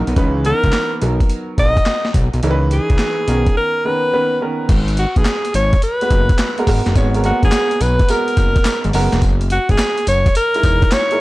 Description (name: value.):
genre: R&B, new jack swing.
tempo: 106 BPM.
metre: 4/4.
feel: swing 67% on 16ths.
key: unclear.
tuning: A4 = 440 Hz.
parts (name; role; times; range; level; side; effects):
clear concert grand piano; accompaniment; 0.0-11.2 s; D#3 to C#5; -21 LUFS; right 2 dB; none.
fat analog bass; bass; 0.0-10.9 s; E1 to C#2; -17 LUFS; equal; none.
boom bap sampler-style drum kit; drums; 0.1-11.2 s; crash cymbal, handclaps, hi-hat, kick drum, snare drum, tambourine; -17 LUFS; equal; none.
bright alto saxophone; melody; 0.5-11.2 s; F#4 to D#5; -19 LUFS; equal; none.
group handclap; percussion; 5.3-11.1 s; none; -36 LUFS; left 2 dB; none.
room: digital ambience.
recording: dark, warm production.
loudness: -13 LUFS.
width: side -19 dB against mid.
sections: 0.0-4.7 A section; 4.7-11.2 B section.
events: none.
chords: 0.2 C#m9; 1.0 Bmaj7; 2.4 C#m9; 3.3 Bmaj9; 4.7 G#m9; 9.2 F#13.